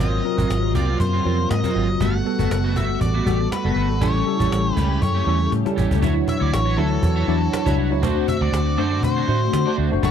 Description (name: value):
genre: polished 1980s jazz-funk pop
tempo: 120 BPM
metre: 4/4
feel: swing 54% on 16ths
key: D major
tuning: A4 = 441 Hz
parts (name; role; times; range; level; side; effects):
- octave-fuzz lead guitar; melody; 0.0-10.1 s; A4 to F#5; -27 LUFS; left 2 dB; distortion, slapback echo
- tine electric piano; accompaniment; 0.0-10.1 s; F#3 to C#5; -23 LUFS; left 2 dB; slow stereo tremolo, analog chorus
- warm studio string section; sustained chords; 0.0-10.1 s; B2 to C#5; -32 LUFS; right 2 dB; none
- electric guitar at the edge of break-up; riff; 0.0-10.1 s; F#3 to D5; -31 LUFS; right 5 dB; analog chorus
- vintage muted fingered electric bass; bass; 0.0-10.1 s; F#1 to D3; -21 LUFS; equal; none
- cajon; drums; 0.2-10.1 s; none; -27 LUFS; equal; none
room: small room reverb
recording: dry, close 1970s-style studio recording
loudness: -18 LUFS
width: side -8 dB against mid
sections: 0.0-6.0 A section; 6.0-10.1 B section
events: drum fill 5.5-6.0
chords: 0.0 G#13; 2.0 Gmaj9; 4.0 A7; 6.0 Dmaj9; 8.0 D7